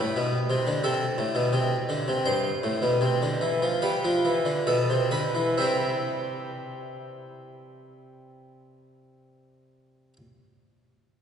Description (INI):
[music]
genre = classical, baroque-style two-part invention for harpsichord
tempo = 64-90 BPM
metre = 4/4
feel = straight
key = C major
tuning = A4 = 440 Hz
[part]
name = harpsichord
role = solo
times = 0.0-10.2 s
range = G2 to E5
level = -24 LUFS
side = equal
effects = none
[sound]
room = wet church reverb, RT60 3.5 s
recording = heard from further back in the room, nothing above 10.9 kHz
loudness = -23 LUFS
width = side -8 dB against mid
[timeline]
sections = 0.0-5.6 A section; 5.6-9.3 B section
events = slowing down 0.0-5.6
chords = 0.0 C5; 2.3 C/G; 3.8 G7; 5.6 C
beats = 0.14 0.82 1.52 | 2.25 3.01 3.81 4.66 | 5.57 6.51 7.45 8.39